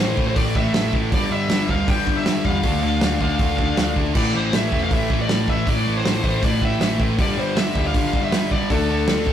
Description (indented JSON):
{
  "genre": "punk rock",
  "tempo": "158 BPM",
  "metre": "4/4",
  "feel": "straight",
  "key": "unclear",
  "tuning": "A4 = 443 Hz",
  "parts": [
    { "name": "high-gain lead guitar", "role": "melody", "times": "0.0-9.3 s", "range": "A4 to G5", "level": "-25 LUFS", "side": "left 2 dB", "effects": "distortion" },
    { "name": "crunchy overdriven guitar", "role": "riff", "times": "0.0-9.3 s", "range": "G2 to D4", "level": "-26 LUFS", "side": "left 5 dB", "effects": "none" },
    { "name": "distorted electric guitar", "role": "riff", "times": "0.0-9.3 s", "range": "G2 to D4", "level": "-30 LUFS", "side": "right 5 dB", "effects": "overdrive" },
    { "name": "fuzz guitar", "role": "riff", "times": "0.0-9.3 s", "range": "G2 to D4", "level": "-26 LUFS", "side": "right 1 dB", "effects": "distortion" },
    { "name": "hollow-body short-scale picked electric bass", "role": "bass", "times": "0.0-9.3 s", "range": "E1 to E2", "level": "-26 LUFS", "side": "right 1 dB", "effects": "none" },
    { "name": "loose indie drum kit", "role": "drums", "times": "0.2-9.3 s", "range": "crash cymbal, hi-hat, kick drum, snare drum", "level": "-22 LUFS", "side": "right 1 dB", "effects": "none" }
  ],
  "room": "moderate studio reverb, RT60 0.6 s",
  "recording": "rough rehearsal-room recording, warm saturation",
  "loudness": "-18 LUFS",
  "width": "side -10 dB against mid",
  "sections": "0.0-9.3 A section",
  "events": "none",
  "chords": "0.0 Am; 1.1 G5; 2.6 Dm; 4.2 Am; 7.2 G5; 8.7 D5",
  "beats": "0.36 0.74 | 1.12 1.50 1.88 2.26 | 2.64 3.02 3.40 3.78 | 4.16 4.53 4.91 5.29 | 5.67 6.05 6.43 6.81 | 7.19 7.57 7.95 8.32 | 8.70 9.08"
}